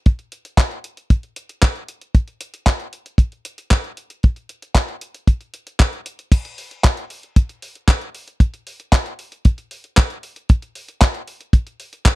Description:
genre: italo disco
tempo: 115 BPM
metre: 4/4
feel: straight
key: none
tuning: none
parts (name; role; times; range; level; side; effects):
- gated 80s digital drum machine; drums; 0.1-12.2 s; crash cymbal, handclaps, hi-hat; -22 LUFS; equal; gated reverb, overdrive
- kick drum; drums; 0.1-12.2 s; none; -12 LUFS; equal; none
room: little or no reverb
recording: dry, close 1970s-style studio recording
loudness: -17 LUFS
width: side -19 dB against mid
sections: 0.0-6.3 A section; 6.3-12.2 B section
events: none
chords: none

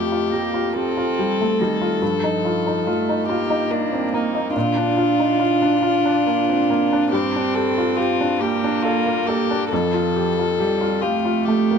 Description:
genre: neoclassical piano and strings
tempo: 47 BPM (dotted quarters)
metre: 6/8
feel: rubato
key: unclear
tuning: A4 = 440 Hz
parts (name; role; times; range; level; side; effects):
- warm violin; melody; 0.0-11.8 s; D4 to A4; -22 LUFS; left 8 dB; none
- warm cello; second line; 0.0-11.8 s; Eb3 to D4; -22 LUFS; right 7 dB; none
- felt-muted upright piano; accompaniment; 0.0-11.8 s; F2 to A4; -22 LUFS; equal; none
room: moderate plate reverb, RT60 3.6 s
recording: none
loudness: -18 LUFS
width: side -6 dB against mid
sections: 0.0-11.8 A section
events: none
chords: 0.0 Fadd9; 2.0 Ebadd9/G; 4.5 Bb; 7.1 Gmadd9; 9.7 Fadd9

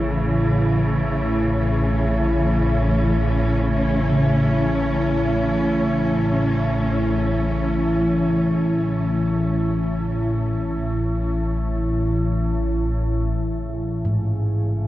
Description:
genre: dark ambient drone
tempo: free time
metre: none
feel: none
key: A major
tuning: A4 = 445 Hz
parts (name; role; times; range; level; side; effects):
- dark symphonic cello section; sustained chords; 0.0-13.3 s; C#3 to C#4; -24 LUFS; equal; shimmer reverb
- organ-like drone; drone; 0.0-14.9 s; A1 to C#3; -20 LUFS; equal; ensemble chorus, built-in reverb
- gamelan-type bossed gongs; arpeggios; 4.1-14.9 s; G#2 to C#3; -26 LUFS; equal; diffuse ambient delay
room: wet huge ambient reverb, RT60 8.8 s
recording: worn, warbling old tape, cassette tape, warbly pitch drift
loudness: -18 LUFS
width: side -15 dB against mid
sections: 0.0-13.3 A section; 13.3-14.9 A section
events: fade-out on cello section 0.0-13.3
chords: 0.0 A; 13.3 Amaj7

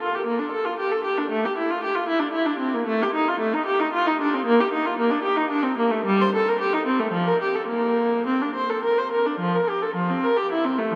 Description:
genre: classical, baroque-style suite movement for unaccompanied viola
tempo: 101-120 BPM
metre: 3/4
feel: rubato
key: Bb major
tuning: A4 = 441 Hz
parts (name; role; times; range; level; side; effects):
- rich viola; solo; 0.0-11.0 s; F3 to C5; -23 LUFS; equal; none
room: wet huge ambient reverb, RT60 8.3 s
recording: in a vast, echoing space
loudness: -23 LUFS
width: mono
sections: 0.0-9.4 A section; 9.4-11.0 A section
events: none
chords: none

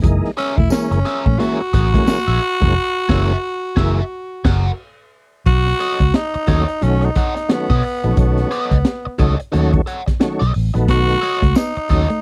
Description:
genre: funk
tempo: 88 BPM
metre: 4/4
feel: swing 60% on 16ths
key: unclear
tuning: A4 = 440 Hz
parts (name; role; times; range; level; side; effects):
- clean electric guitar; riff; 0.0-2.7, 10.9-12.2 s; F#3 to B3; -26 LUFS; equal; none
- tonewheel organ; stabs; 0.0-12.1 s; D#3 to E4; -23 LUFS; equal; chorus vibrato
- vintage muted fingered electric bass; bass; 0.0-12.1 s; E1 to B2; -19 LUFS; equal; none
- crunchy breakbeat drum kit; drums; 0.0-12.2 s; crash cymbal, hi-hat, kick drum, snare drum; -20 LUFS; equal; none
- growling tenor saxophone; melody; 0.4-12.2 s; B3 to F#4; -23 LUFS; equal; none
- crunchy overdriven guitar; accompaniment; 0.4-12.1 s; G#4 to F#5; -28 LUFS; equal; wah
- tambourine; percussion; 0.7-2.3, 11.6-11.7 s; none; -38 LUFS; equal; none
room: little or no reverb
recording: dry, close 1970s-style studio recording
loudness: -17 LUFS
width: mono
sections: 0.0-5.5 A section; 5.5-12.2 B section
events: band accent 2.8-5.5; tonewheel organ fill 4.1-5.5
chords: 0.0 F#9; 5.5 B9

